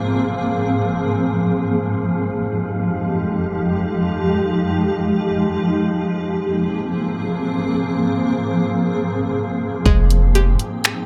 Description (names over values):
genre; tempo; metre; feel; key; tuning
hip hop, atmospheric cloud-rap; free time; none; none; F minor; A4 = 440 Hz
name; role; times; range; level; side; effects
granular cloud pad; sustained chords; 0.0-11.1 s; F2 to G5; -21 LUFS; equal; built-in reverb, sidechain pumping
wind-like tuned noise texture; texture; 0.0-11.1 s; Ab3 to G5; -31 LUFS; equal; built-in reverb
string-like resonator pluck; arpeggios; 9.9-11.1 s; Ab3 to G4; -26 LUFS; equal; chorus, analog delay
warm 808-style bass; bass; 9.9-10.6 s; F1; -16 LUFS; equal; none
smooth R&B drum kit; drums; 9.9-11.0 s; finger snaps, hi-hat, kick drum; -20 LUFS; equal; none
room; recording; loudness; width
light reverb; echo-heavy mix; -19 LUFS; mono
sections
0.0-9.9 A section; 9.9-11.1 B section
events
none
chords
0.0 Ab69; 2.0 Fm9; 5.9 Ab69; 9.9 Fm9